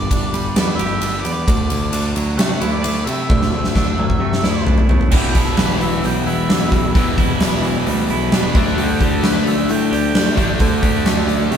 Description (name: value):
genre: quiet-loud alternative rock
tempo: 132 BPM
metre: 4/4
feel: straight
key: E minor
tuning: A4 = 440 Hz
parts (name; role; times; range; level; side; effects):
- octave-fuzz lead guitar; melody; 0.0-10.8 s; G4 to G5; -26 LUFS; right 1 dB; distortion
- twangy electric guitar; arpeggios; 0.0-11.6 s; E2 to G4; -26 LUFS; right 4 dB; none
- modern bright picked electric bass; bass; 0.0-11.6 s; E1 to C3; -22 LUFS; equal; none
- huge arena drum kit; drums; 0.1-11.6 s; crash cymbal, hi-hat, kick drum, ride cymbal, snare drum, toms; -17 LUFS; equal; none
- distorted electric guitar; riff; 5.1-11.6 s; E2 to D4; -20 LUFS; left 2 dB; overdrive
room: light reverb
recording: band playing live in one room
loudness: -14 LUFS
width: side -8 dB against mid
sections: 0.0-5.1 A section; 5.1-11.6 B section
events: half time 0.0-5.1; drum fill 3.3-5.1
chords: 0.0 G; 1.5 Dadd9; 5.1 Em7; 8.6 Dsus4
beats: 0.11 0.56 1.02 | 1.48 1.93 2.39 2.85 | 3.30 3.76 4.21 4.67 | 5.13 5.58 6.04 6.50 | 6.95 7.41 7.87 8.32 | 8.78 9.23 9.69 10.15 | 10.60 11.06 11.52